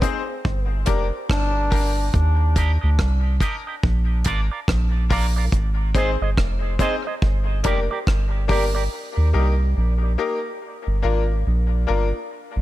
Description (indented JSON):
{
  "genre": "dub reggae",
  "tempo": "71 BPM",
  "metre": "4/4",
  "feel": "swing 59% on 16ths",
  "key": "Eb major",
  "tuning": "A4 = 440 Hz",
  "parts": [
    { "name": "bright concert grand piano", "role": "stabs", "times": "0.0-12.1 s", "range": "Bb3 to C5", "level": "-28 LUFS", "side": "left 5 dB", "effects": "high-pass filter, dub echo" },
    { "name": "deep reggae drum kit", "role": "drums", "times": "0.0-8.7 s", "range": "hi-hat, kick drum, rim click", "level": "-23 LUFS", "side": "equal", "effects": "none" },
    { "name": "soft dub sub bass", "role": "bass", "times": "0.5-12.6 s", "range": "F1 to Eb2", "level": "-20 LUFS", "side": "equal", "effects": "none" },
    { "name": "clear trombone", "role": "melody", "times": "1.3-2.1 s", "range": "D4", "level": "-30 LUFS", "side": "left 1 dB", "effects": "dub echo" },
    { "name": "electric guitar with an envelope filter", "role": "accompaniment", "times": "2.6-8.8 s", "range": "F4 to Eb5", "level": "-29 LUFS", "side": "right 6 dB", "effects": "high-pass filter, dub echo" }
  ],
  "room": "studio reverb",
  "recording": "echo-heavy mix",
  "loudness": "-19 LUFS",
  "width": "side -15 dB against mid",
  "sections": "0.0-8.9 A section; 8.9-12.6 B section",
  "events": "break 0.0-2.1; filter sweep 0.0-5.5",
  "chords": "0.4 Gm; 2.1 Eb; 3.8 Bb; 5.5 Ab; 7.2 Gm; 8.9 Eb; 10.6 Bb"
}